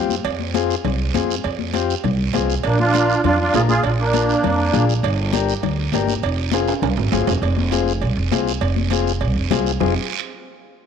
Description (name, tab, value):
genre	latin, cumbia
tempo	201 BPM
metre	4/4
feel	straight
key	F dorian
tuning	A4 = 440 Hz
part	combo organ	accompaniment	0.0-9.9 s	C4 to Bb4	-24 LUFS	left 11 dB	none
part	upright bass	bass	0.0-9.9 s	F1 to F2	-21 LUFS	right 1 dB	none
part	congas	percussion	0.1-9.9 s	none	-26 LUFS	left 12 dB	none
part	guiro	percussion	0.1-9.9 s	none	-30 LUFS	right 15 dB	none
part	cowbell and timbales	percussion	0.2-9.9 s	none	-28 LUFS	right 14 dB	none
part	musette accordion	melody	2.6-4.8 s	Bb3 to Ab4	-19 LUFS	right 3 dB	none
room	moderate plate reverb, RT60 2.9 s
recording	1960s-style stereo with parts hard left and right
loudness	-17 LUFS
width	side -7 dB against mid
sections	0.0-7.4 A section; 7.4-9.8 B section; 9.8-10.9 C section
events	drum fill 6.5-7.4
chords	0.0 Fm; 2.6 Bb; 5.0 Gm; 6.2 Fm